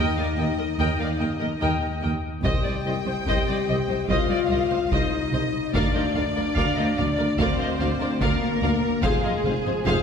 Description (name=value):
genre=cinematic, epic orchestral film score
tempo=73 BPM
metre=4/4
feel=straight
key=C minor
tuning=A4 = 441 Hz
part: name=warm symphonic violin section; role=melody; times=0.0-10.0 s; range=C5 to G5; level=-30 LUFS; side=left 4 dB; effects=none
part: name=clear symphonic violin section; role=second line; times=0.0-10.0 s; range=Ab4 to G5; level=-32 LUFS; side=left 1 dB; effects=none
part: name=rich symphonic viola section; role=accompaniment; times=0.0-10.0 s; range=Ab4 to Eb5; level=-31 LUFS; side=right 1 dB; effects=none
part: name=mellow French horn section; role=sustained chords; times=0.0-10.0 s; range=Ab3 to G4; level=-28 LUFS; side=left 4 dB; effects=none
part: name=warm symphonic cello section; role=bass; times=0.0-9.9 s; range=C2 to F2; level=-30 LUFS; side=right 1 dB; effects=none
part: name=warm symphonic double bass section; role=bass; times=0.0-9.9 s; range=F1 to Eb2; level=-30 LUFS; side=right 2 dB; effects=none
part: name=warm tuba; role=bass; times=0.0-9.9 s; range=F1 to Eb2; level=-30 LUFS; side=right 2 dB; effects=none
part: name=taiko ensemble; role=drums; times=2.4-10.0 s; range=none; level=-30 LUFS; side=equal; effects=none
room=wet scoring stage reverb, RT60 2.2 s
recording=heard from further back in the room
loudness=-21 LUFS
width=side -7 dB against mid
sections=0.0-10.0 A section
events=none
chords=0.0 Eb; 2.4 Cm; 5.7 Bb/D; 9.0 Fm